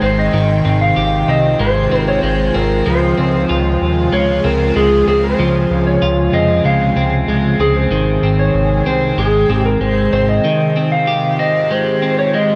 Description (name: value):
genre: dream pop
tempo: 95 BPM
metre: 4/4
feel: straight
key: unclear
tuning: A4 = 440 Hz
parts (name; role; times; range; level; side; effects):
- clean lap steel guitar; melody; 0.0-12.6 s; Ab4 to F5; -19 LUFS; equal; tape echo
- shimmering ambient pad; sustained chords; 0.0-12.6 s; Ab2 to G5; -24 LUFS; equal; chorus, built-in reverb
- electric guitar at the edge of break-up; arpeggios; 0.0-12.6 s; Eb3 to G4; -19 LUFS; equal; analog chorus, tape echo
- fat analog bass; bass; 0.0-10.4 s; Ab1 to F2; -20 LUFS; equal; none
room: light reverb, digital ambience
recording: worn, warbling old tape, cassette tape, warbly pitch drift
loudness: -15 LUFS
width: mono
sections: 0.0-12.6 A section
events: none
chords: 0.3 Fm9/Ab; 2.9 Dbmaj7; 7.9 Abmaj7; 10.4 Fm9/Ab